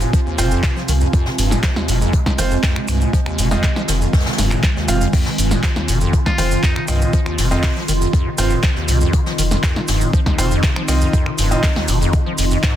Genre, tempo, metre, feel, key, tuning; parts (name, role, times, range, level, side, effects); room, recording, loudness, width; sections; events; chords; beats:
acid house; 120 BPM; 4/4; straight; F minor; A4 = 440 Hz
warbly tape-like pad; sustained chords; 0.0-12.8 s; C3 to F4; -25 LUFS; left 2 dB; chorus, built-in reverb, sidechain pumping
acid bass, square; riff; 0.0-12.7 s; Eb2 to F3; -22 LUFS; equal; wide subtle chorus, vintage 12-bit sampler grit, sidechain pumping
warm sub bass; bass; 0.0-12.6 s; F1 to C2; -19 LUFS; equal; sidechain pumping
jazz brush drum kit; drums; 0.0-12.8 s; hi-hat, snare drum; -31 LUFS; left 2 dB; high-pass filter on hats, soft clipping on snare, high-pass filter on snare, high-pass filter on room
maracas; percussion; 0.0-12.7 s; -29 LUFS; right 4 dB
ethereal airy pad; texture; 0.0-12.8 s; C4 to C6; -26 LUFS; right 2 dB; ensemble chorus, built-in reverb, sidechain pumping
electronic kick drum; drums; 0.1-12.7 s; -16 LUFS; equal; overdrive
bright concert grand piano; stabs; 0.4-11.6 s; C4 to F5; -26 LUFS; right 2 dB; dub echo
punchy analog drum machine; drums; 0.4-12.7 s; crash cymbal, finger snaps, handclaps, hi-hat, snare drum; -24 LUFS; equal; soft clipping on snare
trumpet with metal mute; melody; 6.3-6.8 s; Eb4 to F4; -28 LUFS; left 1 dB; dub echo
light reverb, small room ambience; dense, heavily limited modern master; -15 LUFS; side -11 dB against mid
0.0-12.8 A section
0.0 F5
0.13 0.63 | 1.13 1.63 2.13 2.63 | 3.13 3.63 4.13 4.63 | 5.13 5.63 6.13 6.63 | 7.13 7.63 8.13 8.63 | 9.13 9.63 10.13 10.63 | 11.13 11.63 12.13 12.63